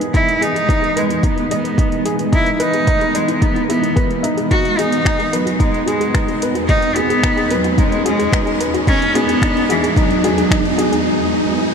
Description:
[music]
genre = piano and strings electronica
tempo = 110 BPM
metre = 4/4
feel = straight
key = unclear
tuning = A4 = 440 Hz
[part]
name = granular cloud pad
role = sustained chords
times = 0.0-11.7 s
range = E2 to D#5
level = -22 LUFS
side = equal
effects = built-in reverb, sidechain pumping
[part]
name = soft round pluck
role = arpeggios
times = 0.0-11.0 s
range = D#4 to E5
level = -26 LUFS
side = left 3 dB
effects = none
[part]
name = warm upright piano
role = riff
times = 0.0-11.7 s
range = D#4 to D#5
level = -21 LUFS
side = equal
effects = ping-pong delay
[part]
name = deep house drum kit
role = drums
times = 0.0-11.0 s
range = finger snaps, hi-hat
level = -27 LUFS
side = left 2 dB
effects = none
[part]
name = riser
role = sound effects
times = 0.0-11.7 s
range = none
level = -24 LUFS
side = equal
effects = none
[part]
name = clear cello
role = melody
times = 0.1-10.8 s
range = E3 to F#4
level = -19 LUFS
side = equal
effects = low-pass filter, ping-pong delay
[part]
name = electronic kick drum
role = drums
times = 0.1-10.6 s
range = none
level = -17 LUFS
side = equal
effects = none
[sound]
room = moderate huge ambient reverb, RT60 4.7 s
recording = none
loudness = -14 LUFS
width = side -6 dB against mid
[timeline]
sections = 0.0-11.7 A section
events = build-up 0.0-11.7; riser 0.0-11.7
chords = 0.0 Emaj7; 4.5 G#m7/E

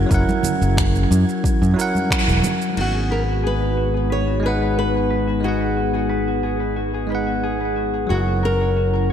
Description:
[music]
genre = sunset chillout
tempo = 90 BPM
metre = 4/4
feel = straight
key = G# minor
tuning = A4 = 440 Hz
[part]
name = flamenco guitar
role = melody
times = 0.0-9.1 s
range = F#4 to C#5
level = -25 LUFS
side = left 1 dB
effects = tape echo
[part]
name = bell-like tine electric piano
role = accompaniment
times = 0.0-9.1 s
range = F#3 to F#5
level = -24 LUFS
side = right 1 dB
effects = auto-pan, tape echo
[part]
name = airy breathy pad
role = sustained chords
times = 0.0-9.1 s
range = F#3 to A#4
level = -26 LUFS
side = left 1 dB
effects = chorus
[part]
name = modern bright fingered electric bass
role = bass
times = 0.0-9.1 s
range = E1 to F#2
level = -21 LUFS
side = equal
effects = none
[part]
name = wind-like tuned noise texture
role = texture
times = 0.0-2.8 s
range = G#6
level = -40 LUFS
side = right 3 dB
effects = built-in reverb
[part]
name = deep house drum kit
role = drums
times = 0.1-2.9 s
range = crash cymbal, finger snaps, shaker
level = -26 LUFS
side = right 1 dB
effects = overdrive, analog delay
[part]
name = electronic kick drum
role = drums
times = 0.1-2.2 s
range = none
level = -22 LUFS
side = equal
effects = overdrive
[part]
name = congas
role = percussion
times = 0.3-2.6 s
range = none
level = -28 LUFS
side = right 2 dB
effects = analog delay
[part]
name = concert harp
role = arpeggios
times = 2.8-9.1 s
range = F#4 to C#5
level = -27 LUFS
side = left 4 dB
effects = low-pass filter, tape echo
[sound]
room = moderate echo chamber reverb, RT60 2.2 s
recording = echo-heavy mix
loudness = -17 LUFS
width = side -9 dB against mid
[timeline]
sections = 0.0-2.8 A section; 2.8-9.1 B section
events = band accent 2.1-2.4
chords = 0.0 F#7; 2.8 G#m7; 8.1 F#7

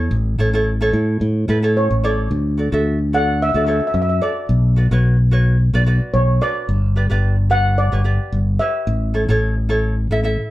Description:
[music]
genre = calypso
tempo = 110 BPM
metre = 4/4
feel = swing 54% on 16ths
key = D major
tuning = A4 = 435 Hz
[part]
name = ukulele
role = accompaniment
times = 0.0-10.5 s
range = E4 to E5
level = -22 LUFS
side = right 1 dB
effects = none
[part]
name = modern bright fingered electric bass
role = bass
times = 0.0-10.4 s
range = G1 to A2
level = -16 LUFS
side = equal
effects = none
[part]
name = steel pan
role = melody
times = 1.8-9.4 s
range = C#5 to F#5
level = -20 LUFS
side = equal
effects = none
[sound]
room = wet studio reverb, RT60 0.5 s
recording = band playing live in one room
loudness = -15 LUFS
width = side -16 dB against mid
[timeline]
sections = 0.1-2.3 A section; 2.3-10.5 B section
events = none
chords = 0.1 A; 2.3 D; 4.5 Bm; 6.7 G; 8.9 A

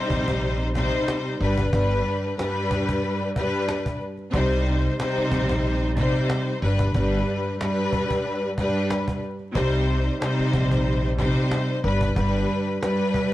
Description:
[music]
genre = hip hop, boom-bap hip-hop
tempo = 92 BPM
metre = 4/4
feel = swing 55% on 16ths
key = C harmonic minor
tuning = A4 = 439 Hz
[part]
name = warm studio string section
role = accompaniment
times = 0.0-13.3 s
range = G2 to C5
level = -23 LUFS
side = equal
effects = none
[part]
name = upright bass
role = bass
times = 0.1-12.4 s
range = G1 to C2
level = -25 LUFS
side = equal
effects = none
[part]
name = cajon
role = drums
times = 0.1-13.3 s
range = none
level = -30 LUFS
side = equal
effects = none
[sound]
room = little or no reverb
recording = dry, gritty hardware recording, vinyl crackle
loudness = -21 LUFS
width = side -15 dB against mid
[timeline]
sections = 0.0-13.3 A section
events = none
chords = 0.0 Cm; 1.4 G; 4.3 Cm; 6.6 G; 9.6 Cm; 11.8 G

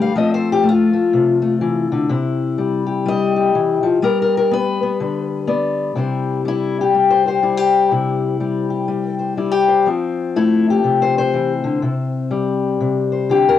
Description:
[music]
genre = acoustic country blues, solo or duo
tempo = 123 BPM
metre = 4/4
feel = swing 61% on 8ths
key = C major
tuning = A4 = 441 Hz
[part]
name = fingerpicked steel-string acoustic guitar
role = solo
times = 0.0-13.6 s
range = C3 to F5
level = -15 LUFS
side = left 4 dB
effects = none
[sound]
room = wet booth ambience, RT60 0.2 s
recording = home recording on cassette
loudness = -15 LUFS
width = side -11 dB against mid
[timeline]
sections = 0.0-6.0 A section; 6.0-13.6 B section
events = steel-string acoustic guitar solo 0.0-6.0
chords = 0.2 F; 2.1 C; 4.0 G; 6.0 C; 9.9 F; 11.8 C5

